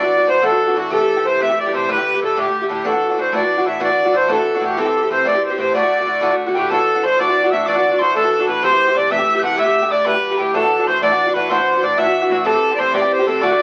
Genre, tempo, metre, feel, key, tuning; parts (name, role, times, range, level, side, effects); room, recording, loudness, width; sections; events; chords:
celtic folk; 125 BPM (dotted quarters); 6/8; straight; D mixolydian; A4 = 438 Hz
accordion; melody; 0.0-13.6 s; F#4 to F#5; -18 LUFS; equal
Irish bouzouki; accompaniment; 0.0-13.6 s; A2 to G4; -22 LUFS; equal
bright wooden whistle; second line; 6.5-13.6 s; G5 to G6; -25 LUFS; equal
wet studio reverb, RT60 0.7 s; very old 78 rpm record, vinyl crackle; -17 LUFS; mono
0.0-6.7 A section; 6.7-13.6 A section
0.0 Dadd9; 0.9 Am7; 1.9 Gsus2; 2.8 Dadd9; 4.8 Am7; 5.7 D; 6.7 Dadd9; 8.6 Am7; 9.6 Gsus2; 10.5 Dadd9; 12.5 Am7